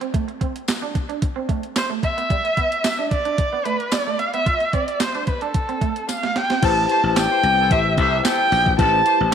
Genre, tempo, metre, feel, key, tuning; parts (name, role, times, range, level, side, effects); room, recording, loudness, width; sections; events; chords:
early-eighties boogie funk; 111 BPM; 4/4; straight; A minor; A4 = 440 Hz
electric guitar through a small old amp; riff; 0.0-6.6 s; G3 to F4; -29 LUFS; right 9 dB; wide subtle chorus
crisp 8-bit digital drum machine; drums; 0.0-9.2 s; crash cymbal, handclaps, hi-hat, kick drum, snare drum; -23 LUFS; right 1 dB; overdrive
tambourine; percussion; 0.7-8.4 s; -32 LUFS; left 16 dB
dark erhu; melody; 1.8-9.3 s; A4 to A5; -19 LUFS; right 1 dB
warm horn section; second line; 6.6-9.2 s; E3 to D5; -28 LUFS; left 13 dB
overdriven tine electric piano; accompaniment; 6.6-9.3 s; E4 to C5; -25 LUFS; left 14 dB; medium tremolo
slap bass; bass; 6.6-9.3 s; A1 to C2; -22 LUFS; left 3 dB
moderate echo chamber reverb, RT60 2.0 s; 1960s-style stereo with parts hard left and right; -18 LUFS; side -8 dB against mid
0.0-6.6 A section; 6.6-9.3 B section
drum fill 6.1-6.6
0.0 Am; 2.0 Gadd9 (rootless); 4.5 F (rootless); 6.6 Am7